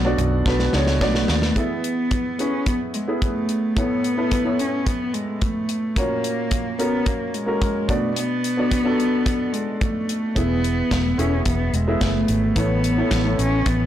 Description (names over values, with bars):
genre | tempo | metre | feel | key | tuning
piano-driven pop | 109 BPM | 4/4 | straight | unclear | A4 = 441 Hz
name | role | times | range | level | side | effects
warm upright piano | accompaniment | 0.0-13.9 s | A2 to E5 | -24 LUFS | equal | none
vintage muted fingered electric bass | bass | 0.0-1.5, 10.4-13.9 s | E1 to D#2 | -22 LUFS | equal | none
modern studio drum kit | drums | 0.2-13.8 s | hi-hat, kick drum, snare drum, toms | -24 LUFS | equal | soft clipping on kick
dark cello | melody | 0.8-13.9 s | G#3 to C#4 | -23 LUFS | equal | none
room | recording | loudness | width
moderate large studio reverb, RT60 0.8 s | blown-out, overdriven recording, overdrive | -19 LUFS | side -11 dB against mid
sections
0.0-1.6 A section; 1.6-13.9 B section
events
drum fill 0.5-1.6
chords
0.0 Bm; 1.6 E; 3.8 Aadd9; 6.0 F#/A#; 7.9 Bm; 10.4 E; 12.6 Aadd9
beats
0.46 1.01 | 1.56 2.11 2.66 3.21 | 3.76 4.31 4.86 5.41 | 5.96 6.51 7.07 7.62 | 8.16 8.71 9.27 9.81 | 10.37 10.91 11.46 12.01 | 12.56 13.11 13.66